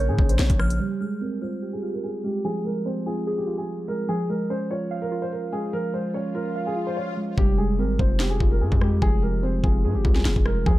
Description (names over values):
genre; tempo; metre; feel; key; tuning
hip hop, drill; 146 BPM; 4/4; half-time; F minor; A4 = 440 Hz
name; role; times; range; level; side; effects
dark concert grand piano; melody; 0.0-10.8 s; G4 to Db5; -30 LUFS; left 1 dB; low-pass filter, digital delay
muted felt-like synth keys; accompaniment; 0.0-10.8 s; Db3 to F5; -27 LUFS; right 2 dB; chorus, low-pass filter
distorted 808-style bass; bass; 0.0-0.8, 7.4-10.8 s; F1 to Bb2; -23 LUFS; equal; distortion
drill drum kit; drums; 0.2-0.8, 7.4-10.8 s; hi-hat, kick drum, rim click, snare drum; -22 LUFS; equal; none
delicate synth tine bell; second line; 0.6-0.8 s; F6; -39 LUFS; left 1 dB; chorus, phaser, digital delay
swell; sound effects; 6.0-7.4 s; none; -37 LUFS; left 6 dB; none
room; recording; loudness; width
digital ambience; dark, warm production; -22 LUFS; side -16 dB against mid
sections
0.8-7.4 A section; 7.4-10.8 B section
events
filter sweep 0.8-7.4; swell 6.0-7.4; hi-hats muted 7.4-10.8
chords
0.0 Bbm; 0.8 Fmadd9; 4.1 Db; 7.4 Fmadd9